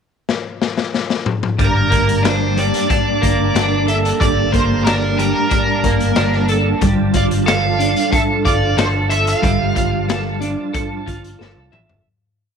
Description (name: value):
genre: psychedelic rock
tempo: 92 BPM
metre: 4/4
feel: straight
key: G dorian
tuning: A4 = 439 Hz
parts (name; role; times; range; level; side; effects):
- raw garage drum kit; drums; 0.3-12.0 s; hi-hat, kick drum, snare drum, toms; -20 LUFS; left 3 dB; none
- dark smooth lead guitar; melody; 1.6-11.7 s; Bb4 to F5; -21 LUFS; right 2 dB; wah, overdrive, tape echo
- percussive tonewheel organ; sustained chords; 1.6-12.0 s; F3 to A5; -29 LUFS; right 13 dB; overdrive, fast rotary speaker
- twelve-string electric guitar; riff; 1.6-12.1 s; G2 to E5; -18 LUFS; right 1 dB; harmonic tremolo, double-tracked left and right
- picked electric bass; bass; 1.6-12.0 s; G1 to C2; -20 LUFS; equal; none
room: small room ambience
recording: 1960s-style stereo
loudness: -14 LUFS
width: side -6 dB against mid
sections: 0.0-1.6 pickup bar; 1.6-12.1 groove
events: drum fill 0.3-1.6, 11.4-12.1; fade-out 9.4-12.1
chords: 0.0 N.C.; 1.6 Gmadd9; 6.8 Dmadd9/G